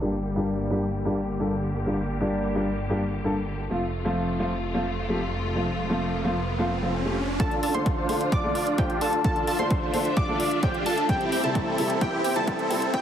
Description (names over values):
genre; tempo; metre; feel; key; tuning
EDM, festival progressive house; 130 BPM; 4/4; straight; D minor; A4 = 440 Hz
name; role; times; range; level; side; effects
dark baby grand piano; accompaniment; 0.0-13.0 s; G2 to C5; -28 LUFS; equal; sidechain pumping, ping-pong delay
clear studio string section; sustained chords; 0.0-13.0 s; C3 to E5; -34 LUFS; left 1 dB; sidechain pumping
detuned saw bass; bass; 0.0-7.4 s; F1 to G1; -32 LUFS; equal; sidechain pumping
riser and noise sweep; sound effects; 5.3-13.0 s; none; -36 LUFS; right 2 dB; none
plucky unison lead; arpeggios; 7.4-13.0 s; G5 to D6; -30 LUFS; left 1 dB; sidechain pumping, ping-pong delay
supersaw chords; riff; 7.4-13.0 s; C4 to D5; -26 LUFS; right 1 dB; sidechain pumping, low-pass filter, ping-pong delay
electronic hi-hat; drums; 7.4-13.0 s; none; -36 LUFS; left 2 dB; none
electronic kick drum; drums; 7.4-13.0 s; none; -27 LUFS; equal; overdrive
room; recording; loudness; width
moderate recital hall reverb, RT60 1.4 s; heavily compressed radio sound, multiband compression, high-pass filter, low-pass filter; -23 LUFS; side -9 dB against mid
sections
0.0-7.4 A section; 7.4-13.0 B section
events
filter sweep 0.0-7.4; riser 5.3-7.4; build-up 7.4-13.0; filter sweep on supersaw synth 7.4-13.0; drum fill 11.1-13.0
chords
0.0 Gm; 3.7 F; 7.4 Dm; 11.1 C